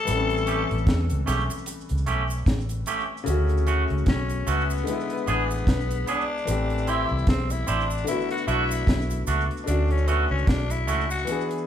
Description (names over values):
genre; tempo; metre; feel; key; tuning
lovers rock reggae; 75 BPM; 4/4; swing 58% on 16ths; unclear; A4 = 440 Hz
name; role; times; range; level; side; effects
raspy tenor saxophone; melody; 0.0-11.5 s; B3 to A4; -30 LUFS; left 4 dB; none
clear grand piano; accompaniment; 0.0-11.7 s; C#3 to A4; -30 LUFS; left 4 dB; none
vintage muted fingered electric bass; bass; 0.1-11.2 s; A1 to E2; -26 LUFS; equal; none
deep reggae drum kit; drums; 0.1-11.7 s; hi-hat, kick drum, snare drum; -25 LUFS; equal; none
cabasa; percussion; 0.1-11.5 s; none; -41 LUFS; right 3 dB; tape echo
twangy electric guitar; stabs; 0.5-11.0 s; A3 to G#4; -28 LUFS; right 4 dB; none
room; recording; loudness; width
moderate large studio reverb, RT60 1.0 s; band playing live in one room; -22 LUFS; side -10 dB against mid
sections
0.0-3.3 A section; 3.3-11.7 B section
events
tenor saxophone solo 3.3-11.7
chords
0.0 A7; 3.3 Dmaj7; 4.9 E7; 6.5 Am7; 8.1 Bm7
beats
| 0.07 0.87 1.67 2.47 | 3.27 4.07 4.87 5.67 | 6.47 7.27 8.07 8.87 | 9.68 10.48 11.28